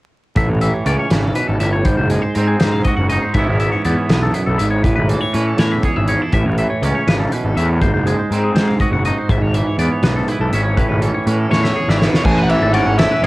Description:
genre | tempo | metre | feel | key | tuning
math rock and midwest emo | 81 BPM (dotted quarters) | 6/8 | straight | A major | A4 = 440 Hz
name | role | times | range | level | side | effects
twangy electric guitar | accompaniment | 0.4-13.3 s | E2 to G#4 | -20 LUFS | right 3 dB | cassette tape
twangy electric guitar | arpeggios | 0.4-13.3 s | G#4 to F#5 | -24 LUFS | left 3 dB | phaser, cassette tape
fuzz picked electric bass | bass | 0.4-13.3 s | F#1 to A2 | -17 LUFS | equal | overdrive
loose indie drum kit | drums | 0.4-13.3 s | crash cymbal, hi-hat, kick drum, ride cymbal, snare drum | -20 LUFS | equal | none
overdriven electric guitar | melody | 11.5-13.3 s | B4 to G#5 | -19 LUFS | equal | cassette tape
room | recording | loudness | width
light reverb | home recording on cassette, vinyl crackle | -14 LUFS | side -19 dB against mid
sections
0.4-12.3 A section; 12.3-13.3 B section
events
drum fill 11.5-12.3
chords
0.4 Amaj7; 1.9 G#7; 3.4 C#m7/G#; 4.8 Amaj7; 7.8 G#7; 9.3 C#m7/G#; 10.8 Amaj7; 12.3 Amaj9

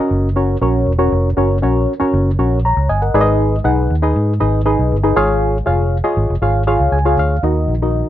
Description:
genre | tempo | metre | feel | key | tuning
uptempo 1960s-style soul | 119 BPM | 4/4 | straight | F# major | A4 = 440 Hz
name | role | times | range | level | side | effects
reed electric piano | accompaniment | 0.0-8.1 s | G#2 to A#5 | -16 LUFS | left 1 dB | phaser
vintage muted fingered electric bass | bass | 0.1-8.0 s | E1 to G#2 | -16 LUFS | equal | none
room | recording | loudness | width
light reverb | none | -13 LUFS | side -12 dB against mid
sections
0.0-7.4 A section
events
reed electric piano fill 2.6-3.4, 6.7-7.4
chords
0.0 F#; 3.1 G#m; 5.2 C#; 7.4 D#m

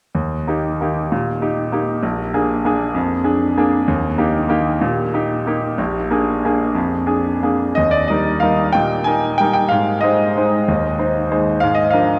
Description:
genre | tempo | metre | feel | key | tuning
classical, piano waltz | 161-204 BPM | 3/4 | rubato | Eb major | A4 = 440 Hz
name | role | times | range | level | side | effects
bright concert grand piano | solo | 0.1-12.2 s | Bb1 to Ab5 | -18 LUFS | equal | none
room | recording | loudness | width
wet cathedral reverb, RT60 6.2 s | in a vast, echoing space | -18 LUFS | mono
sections
0.2-7.8 A section; 7.8-12.2 B section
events
none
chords
0.2 Eb; 2.0 Bb7; 3.9 Eb; 5.8 Bb7; 7.8 Eb; 9.7 Ab; 11.6 Bb7/Ab

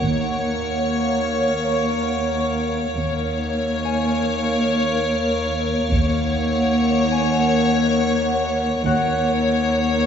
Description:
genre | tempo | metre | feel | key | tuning
cinematic, suspense film score | free time | none | none | Eb minor | A4 = 440 Hz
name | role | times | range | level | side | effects
warm chamber violin section | melody | 0.0-10.1 s | Db5 | -24 LUFS | left 3 dB | none
icy glass pad | sustained chords | 0.0-10.1 s | Bb4 to Gb5 | -24 LUFS | right 2 dB | chorus, built-in reverb
dark chamber double bass section | bass | 0.0-9.4 s | Eb2 | -27 LUFS | right 2 dB | none
rich chamber cello section | bass | 0.0-10.1 s | Eb2 | -22 LUFS | equal | none
taiko ensemble | drums | 0.0-1.2, 5.9-7.1 s | none | -26 LUFS | equal | none
concert harp | texture | 3.9-10.1 s | Gb4 to Ab5 | -30 LUFS | left 6 dB | none
room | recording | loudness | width
wet concert hall reverb, RT60 2.2 s | recorded in a church or concert hall, nothing above 7.7 kHz | -18 LUFS | side -8 dB against mid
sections
0.0-10.1 A section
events
none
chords
0.0 Bbm/Eb; 5.9 Ebm7

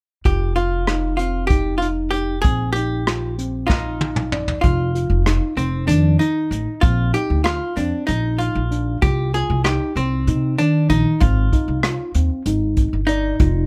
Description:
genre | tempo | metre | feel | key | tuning
progressive instrumental, band music in an uneven meter | 192 BPM (eighths) | 7/8 | straight | F dorian | A4 = 441 Hz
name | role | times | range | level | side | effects
archtop guitar, miked and amplified | melody | 0.3-13.7 s | C4 to Ab4 | -26 LUFS | equal | none
mellow tine electric piano | arpeggios | 0.3-13.7 s | Eb3 to D5 | -26 LUFS | equal | digital delay
upright bass | bass | 0.3-13.7 s | F1 to C3 | -23 LUFS | equal | none
vintage brush drum kit | drums | 0.3-13.5 s | hi-hat, kick drum, rim click, snare drum, toms | -22 LUFS | equal | none
room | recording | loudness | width
light reverb | none | -19 LUFS | mono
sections
0.3-4.6 A section; 4.6-13.7 B section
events
drum fill 3.7-4.6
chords
0.3 F5; 2.4 Bbsus24; 4.6 F5; 6.8 Bbsus24; 9.0 Cm; 11.2 Ab6

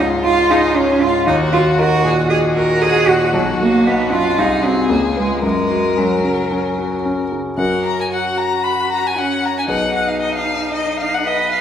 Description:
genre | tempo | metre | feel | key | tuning
quick classical-period movement for piano trio | 115 BPM | 4/4 | straight | F# major | A4 = 440 Hz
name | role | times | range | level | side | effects
rich violin | melody | 0.0-11.6 s | E#4 to B5 | -21 LUFS | left 4 dB | none
clear cello | second line | 0.0-11.6 s | F#3 to B4 | -17 LUFS | right 2 dB | none
warm concert grand piano | accompaniment | 0.0-11.6 s | B1 to B4 | -19 LUFS | left 1 dB | none
room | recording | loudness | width
wet scoring stage reverb, RT60 1.7 s | recorded in a church or concert hall | -14 LUFS | side -9 dB against mid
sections
0.0-7.6 A section; 7.6-11.6 B section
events
none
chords
0.0 C#; 1.3 D#m; 3.3 Bmaj7#11; 4.4 G#7/B#; 4.9 C#7; 5.4 F#; 9.7 G#m/B

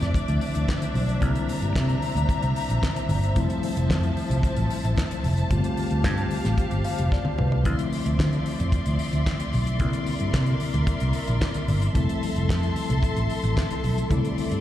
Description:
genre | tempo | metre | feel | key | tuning
disco | 112 BPM | 4/4 | straight | unclear | A4 = 439 Hz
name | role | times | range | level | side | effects
mellow tine electric piano | accompaniment | 0.0-14.6 s | D3 to F5 | -29 LUFS | left 3 dB | medium stereo tremolo, slapback echo
rich studio string section | sustained chords | 0.0-14.6 s | F3 to C6 | -31 LUFS | left 1 dB | none
fingered electric bass | bass | 0.0-14.6 s | F1 to D3 | -24 LUFS | equal | none
damped 70s drum kit | drums | 0.0-14.6 s | handclaps, hi-hat, kick drum, snare drum, toms | -28 LUFS | equal | none
congas | percussion | 0.0-14.5 s | none | -35 LUFS | left 2 dB | none
room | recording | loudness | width
little or no reverb | live gig heard through the venue's PA, recital hall reverb | -22 LUFS | side -12 dB against mid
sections
0.0-14.6 A section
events
tine electric piano fill 6.6-7.7; drum fill 7.1-7.7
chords
0.0 Dm9; 1.2 C9; 3.4 Fmaj7; 5.5 G9sus4; 7.7 Dm9; 9.8 C9; 12.0 Fmaj7; 14.1 C69

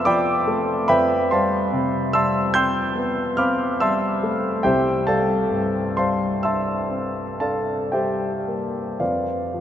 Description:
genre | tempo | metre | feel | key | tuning
classical, impressionist solo piano | 37-50 BPM (dotted quarters) | 9/8 | rubato | F lydian | A4 = 440 Hz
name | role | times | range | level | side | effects
warm grand piano | solo | 0.0-9.6 s | C2 to G6 | -19 LUFS | equal | none
room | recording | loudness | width
wet cathedral reverb, RT60 6.1 s | in a vast, echoing space, nothing above 10.3 kHz | -19 LUFS | side -10 dB against mid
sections
0.0-9.6 A section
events
none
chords
0.0 F6; 4.6 C13; 9.0 F5

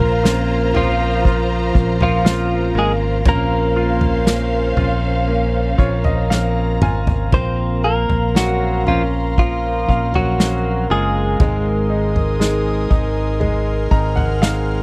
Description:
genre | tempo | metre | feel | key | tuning
pop ballad | 60 BPM | 4/4 | straight | Bb minor | A4 = 440 Hz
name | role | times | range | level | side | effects
direct-recorded clean electric guitar | melody | 0.0-13.9 s | F3 to C5 | -23 LUFS | equal | none
warm studio violin section | second line | 0.0-7.3 s | Db4 to Bb5 | -28 LUFS | equal | none
bright grand piano | accompaniment | 0.0-14.8 s | Ab3 to Bb5 | -28 LUFS | equal | none
airy breathy pad | sustained chords | 0.0-14.8 s | Bb4 to F6 | -28 LUFS | equal | chorus
fingerpicked plugged-in steel-string acoustic guitar | arpeggios | 0.0-14.8 s | Bb2 to Bb4 | -30 LUFS | equal | none
fingered electric bass | bass | 0.0-14.8 s | Gb1 to Bb1 | -22 LUFS | equal | none
unplugged drum kit | drums | 0.0-14.7 s | kick drum, snare drum, toms | -20 LUFS | equal | none
room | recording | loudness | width
little or no reverb | dry, close 1970s-style studio recording | -17 LUFS | mono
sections
0.0-7.3 A section; 7.3-14.8 A section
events
grand piano fill 5.3-7.3, 13.4-14.8; drum fill 6.3-7.3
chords
0.0 Bbmadd9; 11.4 Abadd9

